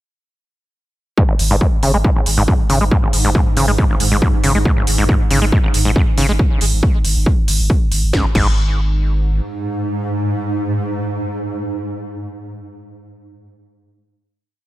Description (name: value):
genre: driving peak-time techno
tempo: 138 BPM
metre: 4/4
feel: straight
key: unclear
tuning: A4 = 438 Hz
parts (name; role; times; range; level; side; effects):
- overdriven acid bass; riff; 1.2-8.5 s; G#1 to G#3; -19 LUFS; equal; sidechain pumping, digital delay
- swarming drone; drone; 2.3-12.3 s; G#2; -23 LUFS; right 1 dB; built-in reverb, sidechain pumping
- electronic kick drum; drums; 1.2-8.5 s; none; -15 LUFS; equal; none
- warm sub bass; bass; 1.4-9.4 s; G#1; -17 LUFS; equal; overdrive, sidechain pumping, low-pass filter
- techno drum kit; drums; 1.4-8.5 s; crash cymbal, hi-hat, snare drum; -22 LUFS; right 1 dB; sidechain pumping on hats, sidechain pumping on cymbals
room: little or no reverb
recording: none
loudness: -14 LUFS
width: side -16 dB against mid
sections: 1.2-8.1 groove; 8.1-11.6 final note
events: filter sweep on acid bass 1.2-6.4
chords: none